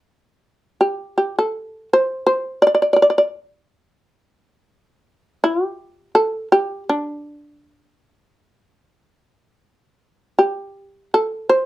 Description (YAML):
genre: japanese traditional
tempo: 85 BPM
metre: 4/4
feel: uneven beats, rubato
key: unclear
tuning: A4 = 441 Hz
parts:
  - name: shamisen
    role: solo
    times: 0.8-11.7 s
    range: D4 to D5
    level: -16 LUFS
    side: equal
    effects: none
room: light reverb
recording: none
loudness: -17 LUFS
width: side -16 dB against mid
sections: 0.0-11.2 A section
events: none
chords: none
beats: 0.44 1.18 1.91 | 2.64 3.34 4.04 4.75 | 5.45 6.15 6.84 7.53 | 8.22 8.93 9.66 10.41 | 11.16